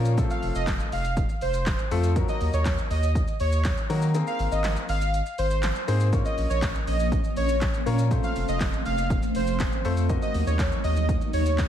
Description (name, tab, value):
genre	dance-pop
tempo	121 BPM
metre	4/4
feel	straight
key	unclear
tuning	A4 = 440 Hz
part	clear concert grand piano	accompaniment	0.0-10.9 s	F3 to Eb5	-31 LUFS	left 5 dB	sidechain pumping, slapback echo
part	saturated sub bass	bass	0.0-11.7 s	F1 to Eb3	-25 LUFS	equal	sidechain pumping
part	punchy analog drum machine	drums	0.1-11.7 s	handclaps, hi-hat, kick drum, shaker, snare drum	-28 LUFS	equal	none
part	soft supersaw	melody	0.3-11.5 s	C5 to F5	-30 LUFS	right 1 dB	digital delay
part	ethereal airy pad	sustained chords	6.4-11.7 s	F3 to Eb4	-31 LUFS	right 1 dB	ensemble chorus, built-in reverb, sidechain pumping
room	light reverb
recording	none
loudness	-22 LUFS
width	side -10 dB against mid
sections	0.0-11.7 A section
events	kick muted 4.1-6.1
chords	0.2 F; 2.2 Ebm; 4.1 Abadd9; 6.1 Bbm; 8.1 F; 10.1 Ebm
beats	| 0.18 0.67 1.17 1.67 | 2.16 2.66 3.15 3.65 | 4.14 4.64 5.14 5.63 | 6.13 6.62 7.12 7.62 | 8.11 8.61 9.10 9.60 | 10.10 10.59 11.09 11.58